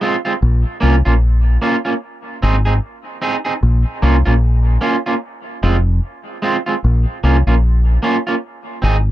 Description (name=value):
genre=dub reggae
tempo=75 BPM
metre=4/4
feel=swing 58% on 16ths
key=Bb minor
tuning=A4 = 440 Hz
part: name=electric guitar at the edge of break-up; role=accompaniment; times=0.0-9.0 s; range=Ab3 to Ab4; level=-18 LUFS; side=right 2 dB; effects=dub echo
part: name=deep dub fingered electric bass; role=bass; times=0.4-9.1 s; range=F1 to C2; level=-12 LUFS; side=equal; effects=none
room=little or no reverb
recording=dry, close 1970s-style studio recording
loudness=-14 LUFS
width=side -14 dB against mid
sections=0.0-9.1 A section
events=none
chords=0.4 Bbm; 2.0 Ab; 3.6 Bbm; 5.2 Fm; 6.8 Bbm; 8.4 Ab